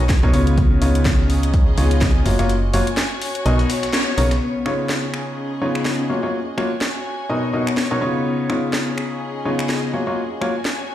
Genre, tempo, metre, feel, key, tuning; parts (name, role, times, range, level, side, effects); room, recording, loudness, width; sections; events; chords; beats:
piano house; 125 BPM; 4/4; swing 56% on 16ths; Db mixolydian; A4 = 440 Hz
bright baby grand piano; riff; 0.0-10.5 s; Cb3 to Eb5; -22 LUFS; left 1 dB; sidechain pumping, dub echo
solid FM bass; bass; 0.0-4.4 s; Gb1 to Db2; -18 LUFS; equal; sidechain pumping
dark chamber string section; texture; 0.0-10.9 s; Cb4 to Ab5; -27 LUFS; left 2 dB; sidechain pumping
dusty soul sampler-style drum kit; drums; 0.1-4.4 s; hi-hat, snare drum; -35 LUFS; equal
electronic kick drum; drums; 0.1-2.1 s; -17 LUFS; equal
garage drum kit; drums; 0.1-10.8 s; finger snaps, hi-hat, snare drum; -25 LUFS; equal
light reverb, digital ambience; played on a big sound system in a bare room, large studio reverb; -17 LUFS; side -12 dB against mid
0.0-4.4 A section; 4.4-10.9 B section
break 2.5-4.4; band accent 3.9
0.0 Cbmaj9; 0.6 Db9; 2.3 Gbmaj7; 3.5 Cbmaj9; 4.4 Db9; 6.1 Gbmaj7; 7.3 Cbmaj9; 8.3 Db9; 9.9 Gbmaj7
0.10 | 0.58 1.06 1.54 2.02 | 2.50 2.98 3.46 3.94 | 4.42 4.90 5.38 5.86 | 6.34 6.82 7.30 7.78 | 8.26 8.74 9.22 9.70 | 10.18 10.66